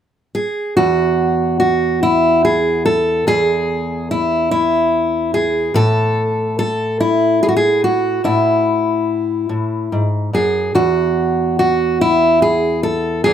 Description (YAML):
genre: folk, solo fingerstyle acoustic guitar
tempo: 48 BPM (dotted quarters)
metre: 6/8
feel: straight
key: unclear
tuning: A4 = 440 Hz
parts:
  - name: fingerpicked steel-string acoustic guitar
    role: solo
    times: 0.3-13.3 s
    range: E2 to A4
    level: -14 LUFS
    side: equal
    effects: none
room: light reverb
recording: none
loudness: -14 LUFS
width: side -9 dB against mid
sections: 0.8-13.3 A section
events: none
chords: 0.0 N.C.; 5.7 A5; 10.7 N.C.